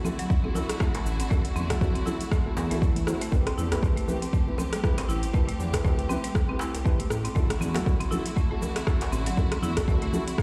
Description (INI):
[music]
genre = afro house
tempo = 119 BPM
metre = 4/4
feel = swing 57% on 16ths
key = unclear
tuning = A4 = 440 Hz
[part]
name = rich studio string section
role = sustained chords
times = 0.0-10.4 s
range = D3 to G4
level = -39 LUFS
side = equal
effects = sidechain pumping
[part]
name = buzzing marimba with medium mallets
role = arpeggios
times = 0.0-10.4 s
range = F#3 to E4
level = -36 LUFS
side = equal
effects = sidechain pumping, dub echo
[part]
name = felt-muted upright piano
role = stabs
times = 0.0-10.2 s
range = C4 to C5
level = -38 LUFS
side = equal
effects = sidechain pumping, low-pass filter, dub echo
[part]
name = congas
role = percussion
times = 0.0-10.4 s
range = none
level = -38 LUFS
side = equal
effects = none
[part]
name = deep house drum kit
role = drums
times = 0.1-10.4 s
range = cabasa, hi-hat, rim click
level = -37 LUFS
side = equal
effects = overdrive
[part]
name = djembe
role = percussion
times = 0.1-10.4 s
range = none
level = -38 LUFS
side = equal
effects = none
[part]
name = electronic kick drum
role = drums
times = 0.3-10.4 s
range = none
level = -27 LUFS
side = equal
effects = overdrive
[part]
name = smooth synth bass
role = bass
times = 1.1-10.0 s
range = A1 to E2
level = -32 LUFS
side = equal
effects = sidechain pumping
[sound]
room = light reverb, studio ambience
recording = played on a big sound system in a bare room, large studio reverb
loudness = -26 LUFS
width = mono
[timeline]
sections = 0.0-10.4 A section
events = none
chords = 0.0 D7; 3.3 Am7; 7.4 D7/A